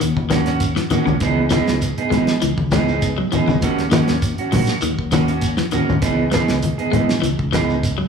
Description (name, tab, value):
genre	afrobeat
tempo	100 BPM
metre	4/4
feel	straight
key	C# dorian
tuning	A4 = 444 Hz
part	electric guitar at the edge of break-up	arpeggios	0.0-8.1 s	C#3 to G#3	-23 LUFS	left 6 dB	none
part	fingered electric bass	bass	0.0-8.0 s	G#1 to D#2	-24 LUFS	left 1 dB	none
part	damped 70s drum kit	drums	0.0-8.0 s	hi-hat, kick drum, snare drum	-25 LUFS	equal	none
part	shekere	percussion	0.0-8.0 s	none	-28 LUFS	right 2 dB	none
part	congas	percussion	0.2-7.7 s	none	-24 LUFS	left 2 dB	none
part	electric guitar at the edge of break-up	stabs	0.3-7.7 s	E3 to G#4	-20 LUFS	right 5 dB	spring reverb
room	wet large studio reverb, RT60 1.5 s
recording	band playing live in one room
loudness	-16 LUFS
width	side -6 dB against mid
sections	0.0-8.1 A section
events	none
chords	0.0 D#m7; 1.2 C#m9; 3.6 D#m7; 6.0 C#m9